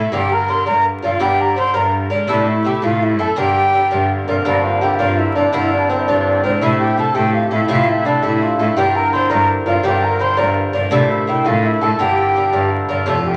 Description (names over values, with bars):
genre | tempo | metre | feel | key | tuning
celtic folk, Celtic jig | 111 BPM (dotted quarters) | 6/8 | straight | G dorian | A4 = 437 Hz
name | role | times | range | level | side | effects
bright baroque flute | melody | 0.0-13.4 s | Bb4 to C6 | -21 LUFS | equal | none
musette accordion | second line | 0.0-13.4 s | Bb3 to C5 | -25 LUFS | equal | none
Irish bouzouki | accompaniment | 0.0-13.4 s | G2 to Bb4 | -22 LUFS | equal | none
rich cello | bass | 0.0-13.4 s | F2 to A2 | -23 LUFS | equal | none
hammered dulcimer | second line | 4.2-13.4 s | Bb3 to C5 | -23 LUFS | equal | none
room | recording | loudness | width
wet studio ambience, RT60 0.5 s | vinyl crackle | -16 LUFS | mono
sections
0.0-4.5 A section; 4.5-13.1 A section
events
none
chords
0.1 Gm; 2.3 Am; 3.4 Gm; 6.6 Am; 8.8 Gm; 10.9 Am; 12.0 Gm